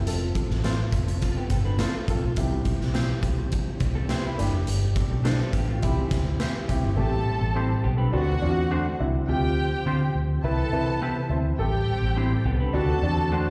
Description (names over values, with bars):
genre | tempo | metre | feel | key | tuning
uptempo 1960s-style soul | 104 BPM | 4/4 | straight | C major | A4 = 440 Hz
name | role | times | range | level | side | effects
tonewheel organ | sustained chords | 0.0-13.5 s | D3 to B4 | -37 LUFS | equal | slow rotary speaker, overdrive, chorus vibrato
vintage muted fingered electric bass | bass | 0.0-13.5 s | F1 to D3 | -28 LUFS | equal | none
warm upright piano | accompaniment | 0.1-13.4 s | A3 to C5 | -33 LUFS | equal | slapback echo
raw garage drum kit | drums | 0.1-6.8 s | hi-hat, kick drum, snare drum | -30 LUFS | equal | none
electric guitar through a small old amp | stabs | 0.6-13.5 s | A3 to D5 | -34 LUFS | equal | slapback echo
electric guitar through a small old amp | riff | 1.2-13.5 s | E3 to C5 | -37 LUFS | equal | subtle chorus, slapback echo
dark studio string section | second line | 7.0-13.5 s | F#4 to A5 | -34 LUFS | equal | slapback echo
room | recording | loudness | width
light reverb | live gig heard through the venue's PA, recital hall reverb | -25 LUFS | mono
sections
0.0-7.0 A section; 7.0-13.5 B section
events
none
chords
0.1 F; 2.4 C; 4.4 Gsus2; 5.8 C; 7.0 Am7; 8.1 D7; 9.3 G7sus4/D; 10.4 Cmaj7; 11.6 Am7; 12.7 D7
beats
| 0.07 0.64 1.22 1.79 | 2.37 2.95 3.52 4.10 | 4.67 5.25 5.83 6.40 | 6.98 7.56 8.13 8.71 | 9.29 9.86 10.44 11.02 | 11.59 12.17 12.75 13.32